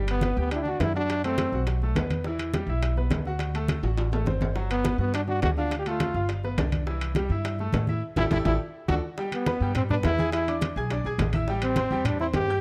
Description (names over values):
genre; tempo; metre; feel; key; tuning
latin, salsa; 208 BPM; 4/4; straight; G major; A4 = 440 Hz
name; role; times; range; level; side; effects
bright grand piano; accompaniment; 0.0-12.6 s; E3 to G#6; -35 LUFS; equal; none
upright bass; bass; 0.0-12.6 s; G1 to A2; -31 LUFS; equal; none
brilliant trombone; melody; 0.1-1.6, 4.7-12.6 s; B3 to G4; -30 LUFS; equal; none
bongos; percussion; 0.1-12.6 s; none; -38 LUFS; equal; none
congas; percussion; 0.1-12.5 s; none; -33 LUFS; equal; none
timbales; percussion; 0.1-12.5 s; none; -38 LUFS; equal; none
room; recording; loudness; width
small room ambience; dry, close 1970s-style studio recording; -26 LUFS; mono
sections
0.0-9.2 A section; 9.2-12.6 B section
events
drum fill 3.8-4.6, 8.3-9.2; band accent 8.0-9.2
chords
0.0 Gmaj7; 1.1 F#dim; 1.7 B5; 2.2 Em9; 3.4 D7; 4.6 Gmaj7; 5.7 Dm; 6.3 G7; 6.9 C6; 8.0 A5; 8.6 D; 9.2 E(#9); 10.3 E7; 11.5 Am7